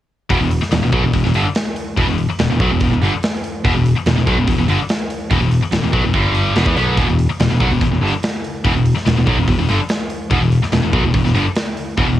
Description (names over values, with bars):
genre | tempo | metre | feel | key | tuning
hard rock | 144 BPM | 4/4 | straight | E minor | A4 = 436 Hz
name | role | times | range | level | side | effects
distorted electric guitar | riff | 0.3-12.2 s | E2 to B3 | -22 LUFS | right 8 dB | overdrive, cassette tape
scooped high-gain guitar | riff | 0.3-12.2 s | E2 to B3 | -18 LUFS | left 4 dB | distortion, cassette tape
picked electric bass | bass | 0.3-12.2 s | E1 to E2 | -18 LUFS | equal | none
big rock drum kit | drums | 0.3-12.1 s | hi-hat, kick drum, snare drum | -20 LUFS | equal | cassette tape
room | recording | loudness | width
light reverb, small room ambience | home recording on cassette | -14 LUFS | side -13 dB against mid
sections
0.3-12.2 A section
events
none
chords
0.3 Em; 6.1 G5; 6.6 Em